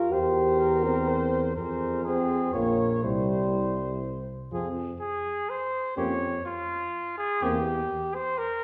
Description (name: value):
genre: classical, brass quintet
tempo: 124 BPM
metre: 3/4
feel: straight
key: F minor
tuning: A4 = 436 Hz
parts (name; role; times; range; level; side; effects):
- mellow trumpet; melody; 0.0-8.6 s; F4 to Db5; -34 LUFS; equal; none
- warm French horn; accompaniment; 0.0-7.6 s; C4 to Bb4; -37 LUFS; equal; none
- warm euphonium; accompaniment; 0.0-7.6 s; F3 to G4; -30 LUFS; equal; none
- warm flugelhorn; second line; 0.1-7.6 s; G4 to Db5; -37 LUFS; equal; none
- warm bass trombone; bass; 0.1-7.8 s; Bb1 to F2; -35 LUFS; equal; none
room: wet recital hall reverb, RT60 1.7 s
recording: heard from further back in the room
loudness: -28 LUFS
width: mono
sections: 0.0-4.5 A section; 4.5-8.6 A section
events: none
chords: 0.1 C7/E; 1.6 Fm; 2.5 Bbm; 3.0 C; 4.5 Fm; 6.0 Gm7b5/F (rootless); 7.4 C7/E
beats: | 0.12 0.60 1.08 | 1.56 2.05 2.54 | 3.04 3.54 4.03 | 4.53 5.01 5.50 | 5.97 6.46 6.94 | 7.42 7.90 8.38